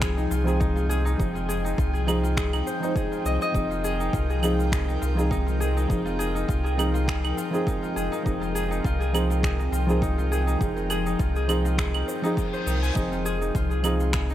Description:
organic downtempo; 102 BPM; 4/4; swing 54% on 16ths; F minor; A4 = 440 Hz
felt-muted upright piano; accompaniment; 0.0-14.3 s; F3 to C5; -29 LUFS; right 2 dB; sidechain pumping, digital delay
airy breathy pad; sustained chords; 0.0-14.3 s; F3 to G5; -33 LUFS; equal; chorus, phaser, sidechain pumping
Celtic harp; arpeggios; 0.0-14.3 s; Eb4 to Ab5; -30 LUFS; left 2 dB; digital delay
warm sub bass; bass; 0.0-14.3 s; F1 to C2; -26 LUFS; equal
electronic finger snaps, shaker and claves; drums; 0.0-14.3 s; -33 LUFS; right 2 dB; overdrive
electronic kick drum; drums; 0.0-14.3 s; -28 LUFS; equal; overdrive
reverse cymbal; sound effects; 12.1-13.0 s; -38 LUFS; left 3 dB
light reverb; -22 LUFS; side -12 dB against mid
0.0-14.3 A section
reverse cymbal 12.1-13.0
0.0 Fm7

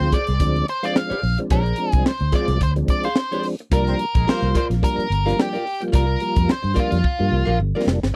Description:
funk; 109 BPM; 4/4; swing 56% on 16ths; A4 = 440 Hz
octave-fuzz lead guitar; melody; 0.0-7.6 s; F4 to F5; -27 LUFS; equal; distortion
warm horn section; second line; 0.0-0.1, 3.9-4.5 s; Ab3 to C5; -35 LUFS; equal; tape echo
archtop guitar, miked and amplified; accompaniment; 0.0-8.1 s; F4 to F5; -30 LUFS; equal
tonewheel organ; stabs; 0.0-8.0 s; F3 to F4; -27 LUFS; equal; overdrive, chorus vibrato, slow rotary speaker
vintage muted fingered electric bass; bass; 0.0-8.1 s; F1 to G2; -24 LUFS; equal
crisp fusion drum kit; drums; 0.0-8.1 s; hi-hat, kick drum, snare drum; -23 LUFS; equal
little or no reverb; dry, close 1970s-style studio recording; -20 LUFS; mono
0.0-8.1 A section
drum fill 7.0-8.1
0.0 Bb9 (rootless); 3.7 C9sus4

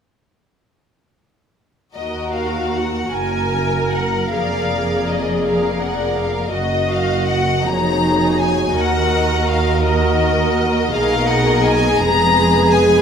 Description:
classical, slow romantic movement for symphony orchestra; 50-56 BPM (dotted quarters); 6/8; rubato; Eb minor; A4 = 440 Hz
rich studio violin section; melody; 1.9-13.0 s; D5 to Bb5; -21 LUFS; left 4 dB
warm symphonic violin section; second line; 2.0-13.0 s; Gb4 to Gb5; -23 LUFS; left 2 dB
warm symphonic viola section; accompaniment; 2.0-13.0 s; Eb4 to Bb4; -21 LUFS; right 1 dB
dark French horn section; sustained chords; 2.0-13.0 s; Ab3 to Ab4; -23 LUFS; right 1 dB
rich symphonic double bass section; bass; 2.0-13.0 s; F1 to Eb2; -23 LUFS; right 2 dB
warm symphonic cello section; bass; 2.0-13.0 s; Eb2 to B2; -24 LUFS; right 1 dB
wet recital hall reverb, RT60 1.6 s; -15 LUFS; side -7 dB against mid
2.0-13.0 A section
2.0 Ebm; 4.3 Bb7/F; 6.5 Ebm/Gb; 8.8 Ebm; 10.9 Bmaj7; 12.0 Fdim

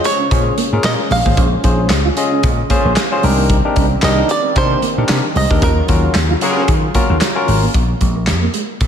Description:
early-eighties boogie funk; 113 BPM; 4/4; swing 56% on 16ths; Bb minor; A4 = 442 Hz
bluegrass banjo; melody; 0.0-7.4 s; Bb4 to F5; -19 LUFS; right 3 dB; diffuse ambient delay
barky tine electric piano; accompaniment; 0.0-7.6 s; Db4 to Eb5; -19 LUFS; left 2 dB; overdrive
brassy analog pad; sustained chords; 0.0-7.7 s; Db3 to F4; -24 LUFS; left 1 dB; chorus
mellow electric guitar; riff; 0.0-8.8 s; Ab3 to F4; -24 LUFS; right 8 dB; analog chorus
modern studio drum kit; drums; 0.0-8.9 s; handclaps, hi-hat, kick drum, snare drum; -17 LUFS; equal
vintage slap bass; bass; 0.3-8.9 s; Ab1 to Eb3; -16 LUFS; equal
warm horn section; second line; 6.4-6.6 s; Bb3 to Bb4; -23 LUFS; equal
moderate lush hall reverb, RT60 1.9 s, studio reverb; dreamy mix soaked in reverb; -12 LUFS; side -8 dB against mid
0.0-7.7 A section; 7.7-8.9 B section
band accent 5.6-7.7
0.0 Bbm9; 3.2 Cm9; 5.6 Ebm9; 7.7 Bb7(no3)

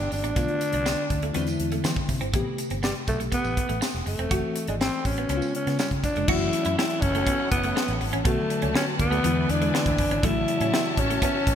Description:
polished 1980s jazz-funk pop; 122 BPM; 4/4; straight; F# minor from 6.3 s; A4 = 442 Hz
breathy alto saxophone; melody; 0.0-11.6 s; G3 to E4; -27 LUFS; equal
bell-like FM electric piano; accompaniment; 0.0-11.6 s; B2 to G4; -30 LUFS; left 4 dB; ensemble chorus
vintage muted fingered electric bass; bass; 0.0-11.6 s; E1 to E3; -29 LUFS; equal
clean electric guitar; riff; 0.1-11.4 s; G3 to F#4; -33 LUFS; right 4 dB; wide subtle chorus
crisp fusion drum kit; drums; 0.1-11.6 s; crash cymbal, hi-hat, kick drum, snare drum; -28 LUFS; equal; gated reverb
tambourine; percussion; 0.1-6.2 s; -42 LUFS; right 8 dB
warm symphonic string section; sustained chords; 6.3-11.6 s; E4 to A5; -32 LUFS; left 1 dB
moderate lush hall reverb, RT60 1.8 s, small room ambience; bright 1980s-style digital production; -22 LUFS; side -9 dB against mid
0.0-6.3 A section; 6.3-11.6 B section
0.4 Bm7b5; 1.3 E7b13; 2.3 Am9; 4.3 F#m7b5; 5.3 C#7; 6.3 F#m7; 8.3 Bm7; 9.2 E7; 10.2 A6

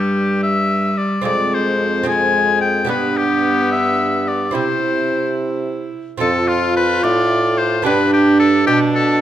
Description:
classical, renaissance-style consort dance; 73 BPM (dotted quarters); 6/8; straight; A4 = 441 Hz
clear oboe; melody; 0.0-9.2 s; F4 to Ab5; -18 LUFS; left 3 dB
lute; accompaniment; 0.0-9.2 s; F2 to A4; -23 LUFS; right 6 dB
warm viola; accompaniment; 0.0-9.2 s; G3 to F4; -20 LUFS; equal
mellow bassoon; bass; 0.0-9.2 s; F2 to C3; -22 LUFS; right 1 dB
wet recital hall reverb, RT60 1.7 s; -14 LUFS; side -11 dB against mid
0.0-6.2 A section; 6.2-9.2 A section
0.0 G5; 1.2 Fm; 2.9 G; 4.5 C; 6.2 F; 7.8 G

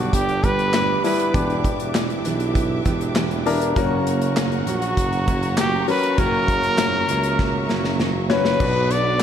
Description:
piano-driven pop; 99 BPM; 4/4; straight; A4 = 440 Hz
breathy trumpet; melody; 0.0-9.2 s; F#4 to D5; -22 LUFS; equal; slapback echo
warm grand piano; accompaniment; 0.0-9.2 s; G2 to C#5; -26 LUFS; left 6 dB; slapback echo
warm studio string section; sustained chords; 0.0-9.2 s; B3 to D6; -32 LUFS; left 2 dB
fingerpicked steel-string acoustic guitar; riff; 0.0-9.2 s; F#2 to G4; -26 LUFS; right 6 dB; slapback echo
warm tuba; bass; 0.0-9.2 s; E1 to C#2; -25 LUFS; right 1 dB
modern studio drum kit; drums; 0.1-9.2 s; crash cymbal, handclaps, hi-hat, kick drum, snare drum; -24 LUFS; equal
moderate lush hall reverb, RT60 2.7 s; big arena sound; -18 LUFS; side -9 dB against mid
0.0-8.6 A section
drum fill 7.4-8.6
0.0 G; 1.3 Em7; 3.8 F#; 8.6 Bm

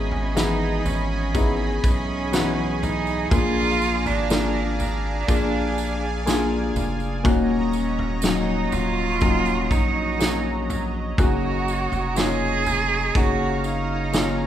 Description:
pop ballad; 61 BPM; 4/4; straight; A4 = 439 Hz
rich cello; melody; 0.0-14.5 s; C#4 to G#4; -26 LUFS; right 4 dB
felt-muted upright piano; accompaniment; 0.0-14.5 s; G#2 to A#4; -25 LUFS; left 4 dB
lush unison pad; sustained chords; 0.0-14.5 s; F#3 to B5; -30 LUFS; right 1 dB; chorus
saturated sub bass; bass; 0.0-14.5 s; D#1 to B1; -28 LUFS; equal
loose indie drum kit; drums; 0.1-14.4 s; kick drum, snare drum, toms; -24 LUFS; equal
tambourine; percussion; 0.4-14.4 s; -38 LUFS; right 8 dB
moderate recital hall reverb, RT60 1.4 s; recorded in a church or concert hall; -20 LUFS; side -11 dB against mid
0.0-14.5 A section
0.0 Emaj7/G#; 3.3 A#7; 7.2 D#m7; 11.2 F#6

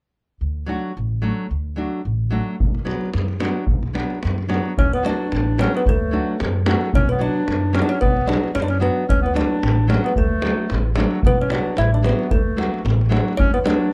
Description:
balkan folk, Balkan wedding band; 112 BPM; 2/4; swing 55% on 16ths; D major; A4 = 442 Hz
upright bass; bass; 0.4-13.7 s; A1 to F#2; -24 LUFS; equal
nylon-string guitar; accompaniment; 0.7-13.9 s; F#3 to F#4; -26 LUFS; equal
davul; percussion; 2.6-13.8 s; -24 LUFS; equal
kalimba; melody; 4.8-13.9 s; A4 to E5; -28 LUFS; equal
clear clarinet; second line; 4.8-13.9 s; A3 to E4; -26 LUFS; equal
light reverb; dark, warm production, lossy compression artefacts; -20 LUFS; mono
0.4-4.8 A section; 4.8-13.4 B section
0.4 D; 2.6 Bm; 4.8 D; 6.9 Bm; 9.1 D; 11.2 Bm; 12.3 D

